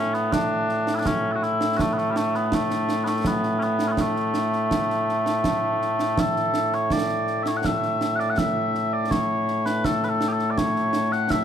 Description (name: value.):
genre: scottish traditional, Scottish pipe music.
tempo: 82 BPM.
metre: 3/4.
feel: straight.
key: A major.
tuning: A4 = 442 Hz.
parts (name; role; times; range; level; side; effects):
mellow small bagpipes; melody; 0.0-11.4 s; A2 to F#5; -22 LUFS; left 1 dB; none.
concert snare drum and concert bass drum; drums; 0.1-11.4 s; none; -28 LUFS; right 2 dB; none.
room: light reverb.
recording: close, detailed microphones.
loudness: -21 LUFS.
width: side -8 dB against mid.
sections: 0.0-6.2 A section; 6.2-11.4 B section.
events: none.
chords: none.